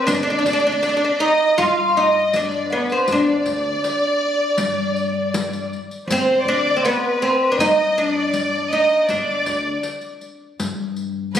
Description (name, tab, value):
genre	Arabic maqam ensemble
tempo	80 BPM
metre	4/4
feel	straight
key	unclear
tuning	A4 = 438 Hz
part	oud	melody	0.0-11.4 s	B3 to F4	-18 LUFS	equal	none
part	dark chamber violin section	second line	0.0-11.4 s	B4 to F5	-21 LUFS	equal	none
part	upright bass	bass	0.1-11.4 s	G1 to G2	-30 LUFS	left 4 dB	none
part	riq	percussion	0.1-11.4 s	none	-29 LUFS	left 3 dB	none
room	wet recital hall reverb, RT60 1.5 s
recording	recorded on a phone in the room, studio reverb, compression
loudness	-17 LUFS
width	side -9 dB against mid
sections	0.1-11.4 A section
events	none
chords	none